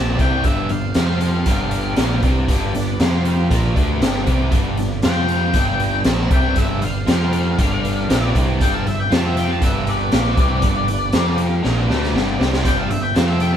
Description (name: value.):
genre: blues rock power trio and southern rock.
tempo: 118 BPM.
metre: 4/4.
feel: straight.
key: G mixolydian.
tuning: A4 = 438 Hz.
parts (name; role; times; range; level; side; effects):
octave-fuzz lead guitar; melody; 0.0-13.6 s; D5 to A5; -25 LUFS; left 3 dB; distortion.
smooth overdriven lead guitar; second line; 0.0-1.4, 5.0-13.6 s; B4 to F5; -34 LUFS; right 4 dB; none.
overdriven tonewheel organ; sustained chords; 0.0-13.6 s; C4 to F5; -31 LUFS; right 4 dB; slow rotary speaker, chorus vibrato.
biting overdriven guitar; riff; 0.0-13.6 s; G2 to F4; -23 LUFS; left 1 dB; none.
growling picked electric bass; bass; 0.0-13.6 s; G1 to F2; -21 LUFS; equal; overdrive.
raw garage drum kit; drums; 0.2-13.5 s; hi-hat, kick drum, snare drum; -19 LUFS; equal; none.
room: light reverb.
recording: band playing live in one room.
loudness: -16 LUFS.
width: side -9 dB against mid.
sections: 0.0-13.6 A section.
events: drum fill 11.6-12.7.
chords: 0.0 G; 1.0 F5; 1.5 G; 3.0 F5; 3.5 G; 5.0 F5; 5.6 G; 7.1 F5; 7.6 G; 9.1 F5; 9.6 G; 11.1 F5; 11.6 G.